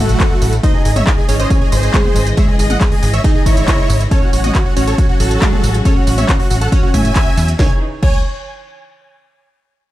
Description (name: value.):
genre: uplifting trance.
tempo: 138 BPM.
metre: 4/4.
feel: straight.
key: C# minor.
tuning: A4 = 438 Hz.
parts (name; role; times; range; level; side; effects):
big supersaw lead; melody; 0.0-8.2 s; A3 to G#5; -21 LUFS; right 1 dB; sidechain pumping, tape echo.
glassy wavetable pluck; second line; 0.0-8.2 s; G#3 to D#5; -22 LUFS; equal; chorus, tape echo.
warm studio string section; sustained chords; 0.0-7.8 s; C#3 to D#5; -24 LUFS; equal; sidechain pumping.
plucky analog bass; bass; 0.0-8.2 s; G#1 to A2; -16 LUFS; equal; sidechain pumping.
techno drum kit; drums; 0.1-8.1 s; crash cymbal, handclaps, hi-hat, ride cymbal, snare drum, tambourine, toms; -22 LUFS; equal; overdrive.
electronic kick drum; drums; 0.2-8.1 s; none; -14 LUFS; equal; overdrive.
room: little or no reverb.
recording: dark, warm production.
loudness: -11 LUFS.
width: side -15 dB against mid.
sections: 0.0-7.6 A section; 7.6-9.3 B section.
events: drop 0.0-7.6.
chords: 0.0 A6; 0.6 C#madd9/G#; 4.1 F#m/A; 7.6 C#5.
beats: 0.20 | 0.64 1.07 1.50 1.94 | 2.37 2.81 3.24 3.68 | 4.11 4.55 4.98 5.42 | 5.85 6.29 6.72 7.16 | 7.59 8.03.